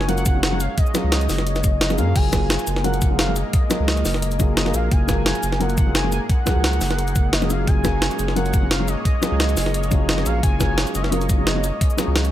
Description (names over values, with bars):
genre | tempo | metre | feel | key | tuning
liquid drum and bass | 174 BPM | 4/4 | swing 53% on 16ths | unclear | A4 = 440 Hz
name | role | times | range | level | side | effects
warm velvety synth lead | melody | 0.0-12.3 s | Eb5 to Ab5 | -28 LUFS | right 1 dB | chorus, dub echo
felt-muted upright piano | accompaniment | 0.0-12.3 s | F3 to Bb4 | -26 LUFS | left 1 dB | none
lush unison pad | sustained chords | 0.0-12.3 s | Gb3 to Db5 | -31 LUFS | right 1 dB | chorus, phaser, sidechain pumping
saturated sub bass | bass | 0.0-12.3 s | Gb1 to Gb2 | -22 LUFS | equal | none
jungle sampler-style drum kit | drums | 0.0-12.3 s | crash cymbal, hi-hat, shaker, snare drum | -24 LUFS | equal | none
electronic kick drum | drums | 0.3-11.9 s | none | -19 LUFS | equal | none
room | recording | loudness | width
digital ambience | none | -17 LUFS | side -12 dB against mid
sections
0.0-12.3 A section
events
none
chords
0.0 Gbmaj9